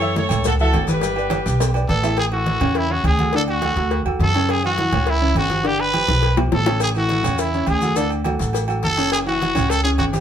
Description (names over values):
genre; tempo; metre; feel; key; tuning
latin, salsa; 208 BPM; 4/4; straight; A major; A4 = 440 Hz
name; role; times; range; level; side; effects
warm horn section; melody; 0.0-1.9 s; F#4 to C#5; -23 LUFS; left 1 dB; none
warm upright piano; accompaniment; 0.0-10.2 s; C#3 to G5; -24 LUFS; equal; none
upright bass; bass; 0.0-10.2 s; F#1 to F#2; -22 LUFS; equal; none
agogo bells and timbales; percussion; 0.0-10.2 s; none; -29 LUFS; right 7 dB; none
congas; percussion; 0.0-10.2 s; none; -26 LUFS; right 1 dB; none
maracas; percussion; 0.0-2.2, 6.8-10.2 s; none; -35 LUFS; left 5 dB; none
cowbell and bongos; percussion; 0.2-10.2 s; none; -27 LUFS; left 6 dB; none
growling trumpet; melody; 1.9-10.2 s; E4 to B4; -21 LUFS; right 1 dB; none
room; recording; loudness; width
moderate studio reverb, RT60 0.6 s; band playing live in one room; -17 LUFS; side -9 dB against mid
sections
0.0-2.2 A section; 2.2-10.2 B section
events
drum fill 1.3-2.2, 6.1-6.8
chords
0.0 F#m7; 1.0 G; 2.2 A; 3.3 D; 4.5 F#5; 5.6 G7; 6.8 A; 8.0 D; 9.1 F#5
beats
0.16 0.45 0.73 | 1.02 1.31 1.60 1.89 | 2.18 2.47 2.76 3.04 | 3.33 3.62 3.91 4.20 | 4.49 4.78 5.07 5.36 | 5.65 5.94 6.23 6.52 | 6.80 7.09 7.38 7.67 | 7.96 8.25 8.54 8.83 | 9.12 9.41 9.70 9.99